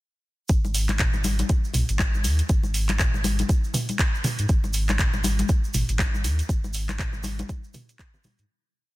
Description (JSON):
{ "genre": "afro house", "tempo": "120 BPM", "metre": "4/4", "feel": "swing 59% on 16ths", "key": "unclear", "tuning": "A4 = 440 Hz", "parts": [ { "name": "warm sub bass", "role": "bass", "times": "0.5-8.5 s", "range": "G#1 to G#2", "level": "-25 LUFS", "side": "equal", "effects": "sidechain pumping" }, { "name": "afro-pop drum kit", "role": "drums", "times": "0.5-8.5 s", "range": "handclaps, hi-hat, toms", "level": "-28 LUFS", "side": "right 1 dB", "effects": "none" }, { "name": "electronic kick drum", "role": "drums", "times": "0.5-8.1 s", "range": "none", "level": "-23 LUFS", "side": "equal", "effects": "none" }, { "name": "tube shaker", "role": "percussion", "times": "0.5-8.5 s", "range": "none", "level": "-36 LUFS", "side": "right 3 dB", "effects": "none" }, { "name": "congas", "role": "percussion", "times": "0.6-8.4 s", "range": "none", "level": "-31 LUFS", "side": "left 3 dB", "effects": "none" } ], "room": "digital ambience", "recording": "dense, heavily limited modern master", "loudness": "-21 LUFS", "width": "side -18 dB against mid", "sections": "0.5-8.5 drop", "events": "drop 0.5-8.5; fade-out 5.8-8.5", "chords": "none", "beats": "| 0.49 0.99 1.49 1.99 | 2.49 2.99 3.49 3.99 | 4.49 4.99 5.49 5.99 | 6.49 6.99 7.49 7.99" }